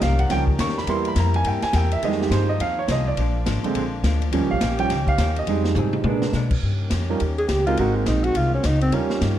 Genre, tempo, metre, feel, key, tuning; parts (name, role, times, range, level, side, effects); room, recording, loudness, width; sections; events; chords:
jazz, big band swing; 209 BPM; 4/4; swing 62% on 8ths; Eb mixolydian; A4 = 438 Hz
clear concert grand piano; accompaniment; 0.0-9.4 s; D3 to Db6; -24 LUFS; right 5 dB
vintage hollow-body jazz guitar; accompaniment; 0.0-6.5 s; Bb2 to Ab4; -31 LUFS; left 5 dB
warm trombone section; sustained chords; 0.0-9.4 s; Eb3 to Bb4; -33 LUFS; left 2 dB
upright bass; bass; 0.0-9.4 s; Ab1 to Cb3; -23 LUFS; left 1 dB
swinging big-band drum kit; drums; 0.0-9.3 s; crash cymbal, hi-hat, kick drum, ride cymbal, snare drum, toms; -27 LUFS; left 1 dB
mellow alto saxophone; melody; 7.4-9.2 s; Bb3 to Ab4; -23 LUFS; equal
moderate large studio reverb, RT60 0.9 s; dark, warm production; -19 LUFS; side -11 dB against mid
0.0-6.6 A section; 6.6-9.4 A section
grand piano solo 0.0-6.6; drum fill 5.8-6.3; alto saxophone solo 6.6-9.4
0.0 Eb7; 0.9 C7; 2.0 Fm7; 3.2 Bb7; 4.3 Eb7; 5.5 Fm7; 6.1 Bb7b9; 6.6 Eb7; 7.8 Ab7